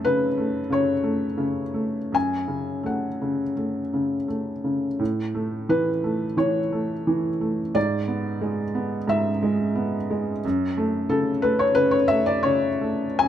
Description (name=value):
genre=classical, contemporary piece for solo felt piano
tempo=77-91 BPM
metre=4/4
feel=rubato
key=F# minor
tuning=A4 = 439 Hz
part: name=felt-muted upright piano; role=solo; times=0.0-13.3 s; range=F#2 to G#5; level=-21 LUFS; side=equal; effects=none
room=moderate large studio reverb, RT60 0.9 s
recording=dark, warm production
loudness=-22 LUFS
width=side -10 dB against mid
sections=0.0-13.3 A section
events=none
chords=0.0 F#m; 5.0 A; 7.8 E/G#; 10.4 F#m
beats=0.05 0.71 1.40 | 2.14 2.86 3.57 4.28 | 5.00 5.69 6.38 7.07 | 7.75 8.42 9.10 9.77 | 10.44 11.10 11.76 12.44 | 13.20